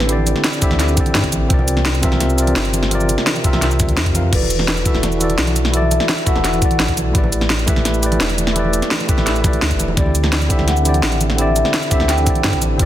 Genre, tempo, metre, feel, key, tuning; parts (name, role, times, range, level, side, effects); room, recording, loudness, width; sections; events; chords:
liquid drum and bass; 170 BPM; 4/4; straight; A4 = 440 Hz
vibraphone with medium mallets; melody; 0.0-0.9, 4.3-6.9, 10.0-12.6 s; B4 to G5; -23 LUFS; left 1 dB; ping-pong delay
tine electric piano; accompaniment; 0.0-12.9 s; C3 to F5; -20 LUFS; equal; medium tremolo, ping-pong delay
sub bass with octave; bass; 0.0-12.9 s; E1 to G2; -19 LUFS; equal; tube saturation
drum and bass drum kit; drums; 0.0-12.9 s; crash cymbal, hi-hat, shaker, snare drum; -20 LUFS; equal; overdrive
congas; percussion; 0.0-12.7 s; -27 LUFS; right 2 dB
electronic kick drum; drums; 0.6-12.9 s; -18 LUFS; equal
light reverb; dense, heavily limited modern master; -14 LUFS; side -12 dB against mid
0.0-12.9 A section
0.0 D9sus4; 1.5 C9sus4; 4.3 E9sus4; 7.1 A9sus4; 10.0 D9sus4